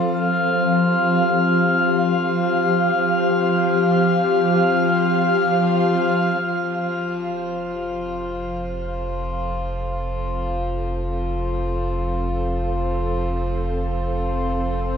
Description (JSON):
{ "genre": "ambient", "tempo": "free time", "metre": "none", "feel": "none", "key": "F major", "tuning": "A4 = 440 Hz", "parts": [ { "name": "ethereal airy pad", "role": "sustained chords", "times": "0.0-15.0 s", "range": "F3 to F5", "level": "-21 LUFS", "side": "equal", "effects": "ensemble chorus, built-in reverb, shimmer reverb" }, { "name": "hand-pumped harmonium", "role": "drone", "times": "0.0-15.0 s", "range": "F3 to F4", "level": "-26 LUFS", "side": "left 1 dB", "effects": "none" }, { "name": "glass harmonica", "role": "texture", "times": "0.1-6.4 s", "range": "F6", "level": "-24 LUFS", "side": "left 3 dB", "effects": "stereo widening, shimmer reverb" }, { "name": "round analog bass", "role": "bass", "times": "6.4-15.0 s", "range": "F1", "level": "-27 LUFS", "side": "equal", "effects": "none" } ], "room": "wet huge ambient reverb, RT60 8.4 s", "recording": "none", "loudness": "-19 LUFS", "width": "side -7 dB against mid", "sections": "0.0-6.4 A section; 6.4-15.0 B section", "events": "filter sweep on ambient pad 0.0-6.4; fade-in on ambient pad 6.4-15.0", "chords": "0.0 F5; 6.4 F", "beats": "free time" }